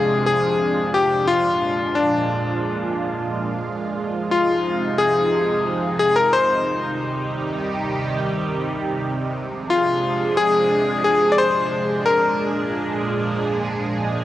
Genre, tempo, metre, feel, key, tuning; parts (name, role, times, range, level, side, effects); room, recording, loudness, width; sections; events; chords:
synthwave; 89 BPM; 4/4; straight; A4 = 439 Hz
bright electric grand piano; melody; 0.0-13.4 s; D4 to D5; -19 LUFS; left 2 dB; cassette tape, analog delay
lush unison pad; sustained chords; 0.0-14.2 s; Bb2 to Ab4; -23 LUFS; right 2 dB; chorus, phaser, cassette tape
moderate lush hall reverb, RT60 2.4 s; home recording on cassette; -18 LUFS; side -14 dB against mid
0.0-14.2 A section
0.0 Dm7b5; 1.3 Bb7; 4.0 Fm7; 6.7 Cm; 9.4 Dm7b5; 12.1 Bb7